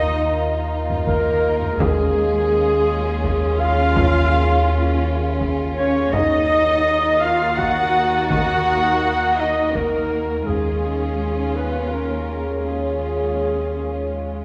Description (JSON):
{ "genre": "cinematic, suspense film score", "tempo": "83 BPM", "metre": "3/4", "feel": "straight", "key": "unclear", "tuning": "A4 = 441 Hz", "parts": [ { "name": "muted studio violin section", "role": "melody", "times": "0.0-14.1 s", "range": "Ab4 to Gb5", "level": "-32 LUFS", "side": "equal", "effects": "none" }, { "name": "dark clarinet", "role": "second line", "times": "0.0-14.0 s", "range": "Ab4 to Gb5", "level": "-24 LUFS", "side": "equal", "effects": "none" }, { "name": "muted studio violin section", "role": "second line", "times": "0.0-14.4 s", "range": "Bb3 to Gb4", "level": "-30 LUFS", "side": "equal", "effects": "none" }, { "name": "muted studio viola section", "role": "accompaniment", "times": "0.0-14.4 s", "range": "Ab3 to Gb5", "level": "-29 LUFS", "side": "equal", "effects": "none" }, { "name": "deep dark ambient pad", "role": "sustained chords", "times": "0.0-14.4 s", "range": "Eb4 to F5", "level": "-30 LUFS", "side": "equal", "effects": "chorus, built-in reverb" }, { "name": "muted studio cello section", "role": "bass", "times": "0.0-14.1 s", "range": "Ab3 to Gb4", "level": "-29 LUFS", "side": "equal", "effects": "none" }, { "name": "muted studio double bass section", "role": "bass", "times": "0.0-14.4 s", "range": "Eb2", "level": "-30 LUFS", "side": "equal", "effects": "none" }, { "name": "pure sine sub bass", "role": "drone", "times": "0.0-14.4 s", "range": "Eb2", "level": "-28 LUFS", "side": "equal", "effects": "none" }, { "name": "taiko ensemble", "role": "drums", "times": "0.9-11.9 s", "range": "none", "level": "-29 LUFS", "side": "equal", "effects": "none" }, { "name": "muted studio violin section", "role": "texture", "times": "6.1-10.1 s", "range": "Eb6 to A6", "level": "-37 LUFS", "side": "equal", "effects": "none" } ], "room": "wet recital hall reverb, RT60 1.6 s", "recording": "recorded in a church or concert hall", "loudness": "-19 LUFS", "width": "mono", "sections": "0.0-14.4 A section", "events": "none", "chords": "0.0 Ebsus2; 1.8 Db/Eb; 6.1 Ebmadd9; 10.5 Db/Eb" }